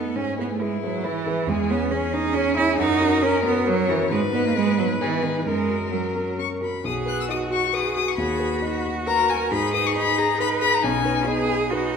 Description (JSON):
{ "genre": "quick classical-period movement for piano quartet", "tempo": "136 BPM", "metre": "3/4", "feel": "straight", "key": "B major", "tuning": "A4 = 438 Hz", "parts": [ { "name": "warm violin", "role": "melody", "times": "0.0-11.5 s", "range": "E4 to F#6", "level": "-26 LUFS", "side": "left 7 dB", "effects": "none" }, { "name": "rich cello", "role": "second line", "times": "0.0-12.0 s", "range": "D#3 to B4", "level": "-24 LUFS", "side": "right 5 dB", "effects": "none" }, { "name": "dark concert grand piano", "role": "accompaniment", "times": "0.0-12.0 s", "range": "B1 to C#5", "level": "-27 LUFS", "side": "left 2 dB", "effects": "none" }, { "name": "rich viola", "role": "accompaniment", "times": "0.0-12.0 s", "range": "B3 to B4", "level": "-30 LUFS", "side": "right 1 dB", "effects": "none" } ], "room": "wet concert hall reverb, RT60 2.2 s", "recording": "none", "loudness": "-20 LUFS", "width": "side -6 dB against mid", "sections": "0.0-6.8 A section; 6.8-12.0 B section", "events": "none", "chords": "0.2 E/G#; 1.5 C#m/E; 2.8 F#; 4.1 G#m; 5.5 F#; 6.8 B; 8.2 B/D#; 9.5 G#m; 10.8 G#m/B" }